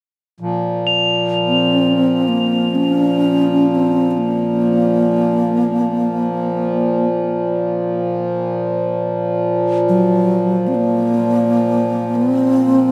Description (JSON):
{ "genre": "world meditative, free-time meditation music", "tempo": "free time", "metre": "none", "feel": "none", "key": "Bb hirajoshi", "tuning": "A4 = 440 Hz", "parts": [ { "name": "hand-pumped harmonium", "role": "drone", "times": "0.4-12.9 s", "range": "Bb2 to F3", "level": "-20 LUFS", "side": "equal", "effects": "none" }, { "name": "crotales", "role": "texture", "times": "0.9-9.6 s", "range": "F7", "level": "-23 LUFS", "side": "equal", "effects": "none" }, { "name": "bass flute", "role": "melody", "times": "1.5-12.9 s", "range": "Gb3 to Db4", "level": "-18 LUFS", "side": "equal", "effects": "delay" } ], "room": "wet huge ambient reverb, RT60 7.1 s", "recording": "none", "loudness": "-17 LUFS", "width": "mono", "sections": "0.4-12.9 A section", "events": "none", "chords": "none" }